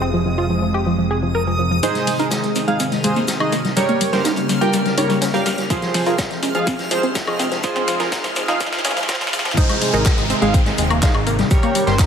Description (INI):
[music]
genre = progressive house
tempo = 124 BPM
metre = 4/4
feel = straight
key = unclear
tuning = A4 = 440 Hz
[part]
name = lush unison pad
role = sustained chords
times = 0.0-12.1 s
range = C3 to Bb3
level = -25 LUFS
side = equal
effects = chorus, phaser, vintage 12-bit sampler grit, sidechain pumping
[part]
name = tight sequenced synth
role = arpeggios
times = 0.0-12.1 s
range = F3 to Bb4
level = -23 LUFS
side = left 1 dB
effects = chorus, sidechain pumping, tape echo
[part]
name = fat analog bass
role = bass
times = 0.0-12.0 s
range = Eb1 to Db2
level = -26 LUFS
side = equal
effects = none
[part]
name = backwards swelling texture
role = texture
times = 0.0-9.6 s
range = Eb6 to F6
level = -30 LUFS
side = equal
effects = built-in reverb, sidechain pumping
[part]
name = chorused polysynth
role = stabs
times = 1.8-12.0 s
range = F3 to G5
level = -21 LUFS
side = right 2 dB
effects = sidechain pumping, tape echo
[part]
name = deep house drum kit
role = drums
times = 1.8-12.1 s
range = handclaps, hi-hat, snare drum, woodblock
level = -24 LUFS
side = left 2 dB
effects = overdrive, high-pass filter on snare, sidechain pumping on hats, high-pass filter on hats, sidechain pumping on perc, high-pass filter on perc, high-pass filter on room
[part]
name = raw garage drum kit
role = drums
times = 1.8-12.1 s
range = hi-hat, shaker, snare drum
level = -30 LUFS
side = equal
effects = sidechain pumping on hats, high-pass filter on hats, high-pass filter on snare, sidechain pumping on perc, high-pass filter on perc, high-pass filter on room
[part]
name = riser and downlifter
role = sound effects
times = 5.8-12.1 s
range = none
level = -30 LUFS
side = equal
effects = none
[part]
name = electronic kick drum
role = drums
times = 5.7-12.1 s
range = none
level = -17 LUFS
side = equal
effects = none
[sound]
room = moderate lush hall reverb, RT60 2.0 s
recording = high-pass filter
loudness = -16 LUFS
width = side -7 dB against mid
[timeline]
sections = 0.0-1.8 A section; 1.8-9.6 B section; 9.6-12.1 C section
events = filter sweep on analog synth pad 0.0-1.8, 1.8-9.6; build-up 1.8-9.6; drum fill 1.8-9.6; filter sweep on synth arpeggio sound 1.8-9.6; filter sweep 1.8-9.6; drop 9.6-12.1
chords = 0.0 Fm; 1.8 Ab; 3.8 Gdim; 5.7 Fm; 9.6 Ab; 11.5 Gdim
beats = 0.38 0.86 1.35 | 1.83 2.31 2.80 3.28 | 3.77 4.25 4.73 5.22 | 5.70 6.19 6.67 7.15 | 7.64 8.12 8.61 9.09 | 9.57 10.06 10.54 11.03 | 11.51 11.99